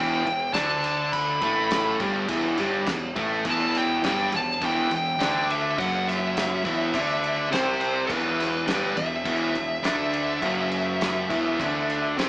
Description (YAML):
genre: quiet-loud alternative rock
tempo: 103 BPM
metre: 4/4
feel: straight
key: E minor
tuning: A4 = 441 Hz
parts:
  - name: fuzz lead guitar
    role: melody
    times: 0.0-12.1 s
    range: B4 to B5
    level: -26 LUFS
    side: equal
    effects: distortion
  - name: biting overdriven guitar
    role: riff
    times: 0.0-12.3 s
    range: E2 to D4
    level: -28 LUFS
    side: left 1 dB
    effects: none
  - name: thick fuzz guitar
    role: riff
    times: 0.0-12.3 s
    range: E2 to D4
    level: -28 LUFS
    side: right 1 dB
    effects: distortion
  - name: growling picked electric bass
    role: bass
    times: 0.0-12.3 s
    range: E1 to D2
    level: -33 LUFS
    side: equal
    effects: overdrive
  - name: loose indie drum kit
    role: drums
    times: 0.3-12.3 s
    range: crash cymbal, kick drum, snare drum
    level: -30 LUFS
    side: equal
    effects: none
room: wet large studio reverb, RT60 1.2 s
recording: band playing live in one room, small speaker sound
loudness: -22 LUFS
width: side -21 dB against mid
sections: 0.0-12.3 A section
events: none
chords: 0.0 Em